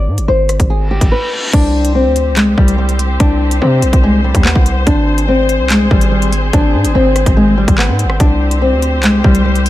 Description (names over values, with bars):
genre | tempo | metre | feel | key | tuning
hip hop, drill | 144 BPM | 4/4 | half-time | unclear | A4 = 439 Hz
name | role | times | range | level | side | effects
nylon-string guitar | melody | 0.0-9.6 s | G3 to D5 | -14 LUFS | left 1 dB | low-pass filter
distorted 808-style bass | bass | 0.0-9.7 s | Ab1 to C3 | -14 LUFS | equal | distortion
drill drum kit | drums | 0.2-9.7 s | crash cymbal, handclaps, hi-hat, kick drum, rim click | -14 LUFS | equal | none
reverse cymbal | sound effects | 0.9-1.5 s | none | -22 LUFS | left 1 dB | none
muted studio string section | sustained chords | 1.5-9.7 s | C4 to C5 | -21 LUFS | left 2 dB | none
room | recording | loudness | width
digital ambience | none | -10 LUFS | side -14 dB against mid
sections
0.0-1.5 A section; 1.5-9.7 B section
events
reverse cymbal 0.9-1.5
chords
0.0 Ab; 1.5 C5; 4.9 Ab; 8.2 C5